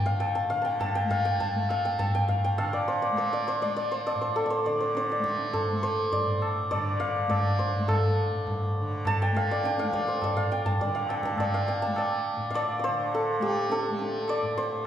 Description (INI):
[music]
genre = indian classical, Hindustani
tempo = 102 BPM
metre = 4/4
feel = straight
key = A raga malkauns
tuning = A4 = 441 Hz
[part]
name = santur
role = melody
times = 0.0-14.9 s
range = G4 to A5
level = -27 LUFS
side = equal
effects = none
[part]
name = tanpura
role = drone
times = 0.0-14.9 s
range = A2 to A3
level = -35 LUFS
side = equal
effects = none
[part]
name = tabla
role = percussion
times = 0.2-14.5 s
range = none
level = -30 LUFS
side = equal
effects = none
[sound]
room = wet recital hall reverb, RT60 1.5 s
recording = recorded in a church or concert hall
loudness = -25 LUFS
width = side -10 dB against mid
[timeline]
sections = 0.0-14.9 A section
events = speeding up 0.0-14.9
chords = none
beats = 0.20 | 0.80 1.40 1.99 2.58 | 3.18 3.77 4.36 4.95 | 5.54 6.13 6.72 7.30 | 7.89 8.47 9.06 9.64 | 10.23 10.81 11.39 11.97 | 12.55 13.13 13.71 14.28 | 14.86